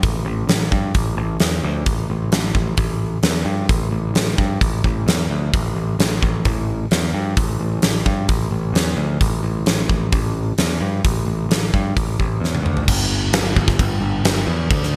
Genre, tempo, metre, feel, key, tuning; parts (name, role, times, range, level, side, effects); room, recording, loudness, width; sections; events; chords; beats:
hard rock; 131 BPM; 4/4; straight; A4 = 440 Hz
overdriven picked electric bass; bass; 0.0-15.0 s; G1 to G2; -23 LUFS; equal
huge arena drum kit; drums; 0.0-14.9 s; crash cymbal, hi-hat, kick drum, snare drum, toms; -22 LUFS; equal; gated reverb
light reverb; bright 1980s-style digital production; -19 LUFS; mono
0.0-12.9 A section; 12.9-15.0 B section
drum fill 12.4-12.9
| 0.02 0.48 0.94 1.40 | 1.86 2.32 2.78 3.23 | 3.69 4.15 4.61 5.07 | 5.53 5.99 6.45 6.91 | 7.37 7.83 8.29 8.75 | 9.21 9.67 10.13 10.59 | 11.04 11.50 11.96 12.42 | 12.88 13.33 13.79 14.24 | 14.70